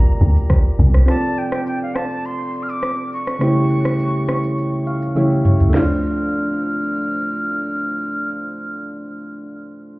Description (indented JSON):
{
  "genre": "afrobeats",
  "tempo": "103 BPM",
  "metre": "4/4",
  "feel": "straight",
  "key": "D minor",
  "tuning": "A4 = 438 Hz",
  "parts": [
    { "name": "breathy bright jazz flute", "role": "melody", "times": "0.0-8.8 s", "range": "F5 to F6", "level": "-26 LUFS", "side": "equal", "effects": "tape echo" },
    { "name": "soft electric-piano-like synth keys", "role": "accompaniment", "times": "0.0-10.0 s", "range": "C#3 to F5", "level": "-20 LUFS", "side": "equal", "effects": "chorus" },
    { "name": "downlifter", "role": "sound effects", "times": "0.0-1.1 s", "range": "none", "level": "-36 LUFS", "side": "equal", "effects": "none" },
    { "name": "deep log drum bass", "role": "bass", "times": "0.2-1.0 s", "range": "C2 to D2", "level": "-11 LUFS", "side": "equal", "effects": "none" },
    { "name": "afro-pop drum kit", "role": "drums", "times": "0.2-5.9 s", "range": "crash cymbal, kick drum, rim click, shaker, snare drum, toms", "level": "-17 LUFS", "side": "equal", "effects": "none" }
  ],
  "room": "little or no reverb",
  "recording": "heard muffled through a wall, club reverb, EQ",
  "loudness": "-16 LUFS",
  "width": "side -21 dB against mid",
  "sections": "0.0-5.7 A section; 5.7-8.1 B section",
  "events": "synth keys fill 4.6-5.7; drum fill 5.2-5.7",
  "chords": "0.0 Gm7; 1.1 Dm7; 3.4 A7/C#; 5.7 Dm7"
}